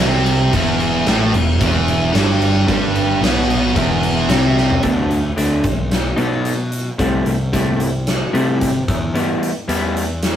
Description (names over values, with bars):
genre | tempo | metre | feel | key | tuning
quiet-loud alternative rock | 111 BPM | 4/4 | straight | E minor | A4 = 439 Hz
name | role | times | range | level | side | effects
sludgy distorted guitar | riff | 0.0-4.8 s | E2 to C4 | -20 LUFS | left 4 dB | overdrive
thick fuzz guitar | riff | 0.0-4.8 s | E2 to C4 | -17 LUFS | right 3 dB | distortion
fuzz picked electric bass | bass | 0.0-10.4 s | E1 to C3 | -21 LUFS | equal | overdrive
big rock drum kit | drums | 0.0-10.4 s | crash cymbal, hi-hat, kick drum, snare drum, toms | -20 LUFS | left 1 dB | none
electric guitar through a small old amp | arpeggios | 4.8-10.0 s | B2 to E4 | -19 LUFS | left 1 dB | none
room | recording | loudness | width
moderate small room reverb, RT60 0.5 s | rough rehearsal-room recording, warm saturation | -14 LUFS | side -10 dB against mid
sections
0.0-4.8 A section; 4.8-10.4 B section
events
drum fill 4.6; half time 4.8-10.4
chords
0.0 Em; 4.8 D; 5.6 B; 7.0 Am7/C; 8.9 Em